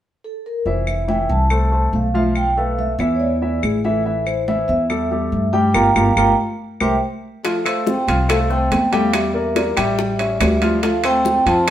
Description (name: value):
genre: Afro-Cuban jazz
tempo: 142 BPM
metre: 4/4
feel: straight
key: F major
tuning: A4 = 440 Hz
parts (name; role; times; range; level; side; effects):
- vibraphone with soft mallets; melody; 0.2-11.7 s; Ab4 to Bb5; -21 LUFS; right 2 dB; none
- warm concert grand piano; accompaniment; 0.7-11.7 s; E3 to G5; -22 LUFS; left 2 dB; none
- upright bass; bass; 0.7-11.7 s; F1 to G2; -21 LUFS; equal; none
- congas; percussion; 0.7-11.7 s; none; -24 LUFS; equal; none
- claves; percussion; 0.9-11.7 s; none; -27 LUFS; left 3 dB; none
- breathy tenor saxophone; second line; 7.4-11.7 s; G3 to C4; -24 LUFS; left 2 dB; none
- bongos; percussion; 7.4-11.7 s; none; -26 LUFS; left 4 dB; none
- timbales; percussion; 7.5-11.7 s; none; -25 LUFS; right 3 dB; none
room: wet stone room reverb, RT60 1.0 s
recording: band playing live in one room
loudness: -16 LUFS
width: side -11 dB against mid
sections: 0.7-7.4 A section; 7.4-11.7 B section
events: band accent 5.8-7.4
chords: 0.0 N.C.; 0.7 Fmaj7; 2.4 G13/B; 3.2 Asus4; 4.1 Am7; 5.8 Gm7; 6.6 C7(no3); 7.4 Fadd9; 9.1 Em7b5; 10.0 A7; 10.8 Dm7